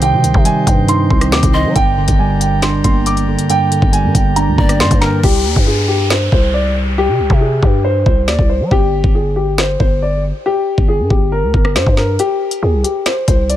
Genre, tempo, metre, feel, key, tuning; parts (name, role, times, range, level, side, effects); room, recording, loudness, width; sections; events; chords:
hip hop, drill; 138 BPM; 4/4; half-time; C minor; A4 = 440 Hz
dark concert grand piano; melody; 0.0-13.6 s; G4 to D6; -17 LUFS; equal; ping-pong delay
mellow tine electric piano; accompaniment; 0.0-5.3 s; G2 to Eb4; -16 LUFS; right 2 dB
pipe organ, sparkling flutes; sustained chords; 0.0-5.2 s; D4 to G5; -26 LUFS; left 4 dB
growling 808-style bass; bass; 0.0-13.6 s; G1 to G3; -17 LUFS; equal
drill drum kit; drums; 0.0-13.6 s; crash cymbal, hi-hat, kick drum, rim click, snare drum; -14 LUFS; equal
mellow pan flute; second line; 1.5-1.7, 4.6-5.2 s; Bb4 to Eb5; -27 LUFS; left 4 dB; ping-pong delay
downlifter; sound effects; 5.2-8.7 s; -24 LUFS; left 1 dB
little or no reverb; -11 LUFS; side -12 dB against mid
0.0-5.2 A section; 5.2-13.6 B section
hi-hats muted 5.2-12.2; break 12.2-12.6
0.0 Cm; 1.8 Gm; 5.2 C5; 8.7 G5; 12.2 Cm